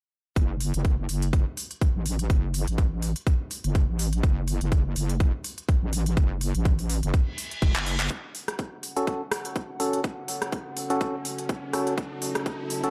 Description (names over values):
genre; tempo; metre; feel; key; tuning
bass house; 124 BPM; 4/4; swing 56% on 16ths; F# minor; A4 = 442 Hz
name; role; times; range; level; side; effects
wobble bass; bass; 0.4-8.1 s; E1 to A1; -29 LUFS; equal; chorus, overdrive, sidechain pumping
electronic kick drum; drums; 0.4-12.6 s; none; -27 LUFS; equal; high-pass filter on kick, high-pass filter on room
garage drum kit; drums; 0.4-12.9 s; handclaps, hi-hat, rim click; -35 LUFS; equal; none
reverse cymbal and riser; sound effects; 7.3-12.9 s; none; -41 LUFS; equal; none
dark analog pad; sustained chords; 8.1-12.9 s; C#4 to A5; -38 LUFS; equal; chorus, sidechain pumping
percussive organ stab; stabs; 9.0-12.9 s; C#4 to A4; -31 LUFS; equal; chorus, sidechain pumping, dub echo
room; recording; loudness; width
little or no reverb; lossy compression artefacts; -27 LUFS; mono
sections
0.4-8.1 A section; 8.1-12.9 B section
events
reverse cymbal 7.3-8.1; drum fill 7.7-8.1; build-up 8.1-12.9; riser 8.1-12.9; filter sweep on analog synth pad 8.1-12.9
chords
0.4 F#m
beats
| 0.36 0.85 1.33 1.81 | 2.30 2.78 3.27 3.75 | 4.23 4.72 5.20 5.69 | 6.17 6.65 7.14 7.62 | 8.11 8.59 9.07 9.56 | 10.04 10.53 11.01 11.49 | 11.98 12.46